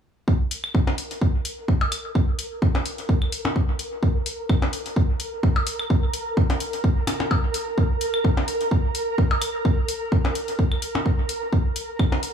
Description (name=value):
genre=minimal techno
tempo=128 BPM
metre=4/4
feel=swing 55% on 16ths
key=unclear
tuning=A4 = 436 Hz
part: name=electronic kick drum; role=drums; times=0.3-12.1 s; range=none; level=-20 LUFS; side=right 1 dB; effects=overdrive
part: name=flickering grainy texture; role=texture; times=0.8-12.3 s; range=Bb4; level=-30 LUFS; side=right 1 dB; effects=built-in reverb, sidechain pumping
part: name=electronic hi-hat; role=drums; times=0.5-12.3 s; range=none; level=-30 LUFS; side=left 4 dB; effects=overdrive
part: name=claves and percussion blips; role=percussion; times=0.6-12.2 s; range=none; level=-29 LUFS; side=left 2 dB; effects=overdrive, dub echo
room=light reverb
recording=studio ambience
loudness=-21 LUFS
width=side -8 dB against mid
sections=0.3-12.3 A section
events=none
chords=none